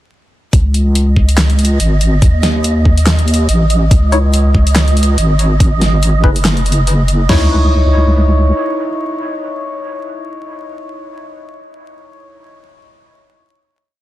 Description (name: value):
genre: deep dubstep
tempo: 142 BPM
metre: 4/4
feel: swing 57% on 16ths, half-time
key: C# minor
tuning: A4 = 440 Hz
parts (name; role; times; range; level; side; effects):
- deep soft wobble bass; bass; 0.5-8.5 s; F#1 to D#2; -11 LUFS; equal; chorus
- deep house drum kit; drums; 0.5-7.2 s; handclaps, hi-hat, snare drum; -17 LUFS; equal; soft clipping on snare
- dubstep drum kit; drums; 0.5-7.4 s; crash cymbal, kick drum, snare drum, toms; -11 LUFS; equal; none
- wind-like tuned noise texture; texture; 1.1-7.3 s; D#5; -23 LUFS; right 4 dB; built-in reverb
- percussive organ stab; stabs; 4.1-11.7 s; D#4 to C#5; -20 LUFS; left 2 dB; wide subtle chorus, dub echo
room: digital ambience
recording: dense, heavily limited modern master, vinyl crackle, lossy compression artefacts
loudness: -10 LUFS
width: side -15 dB against mid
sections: 0.5-7.3 drop; 7.3-10.7 final chord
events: drop 0.5-7.3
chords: 0.5 C#sus2; 2.2 N.C.; 3.9 C#sus2; 5.6 G#5; 7.3 C#madd9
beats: | 0.53 0.95 1.38 1.80 | 2.22 2.65 3.07 3.49 | 3.91 4.33 4.76 5.18 | 5.60 6.03 6.45 6.87 | 7.29 7.71 8.14 8.56 | 8.98 9.40 9.83 10.25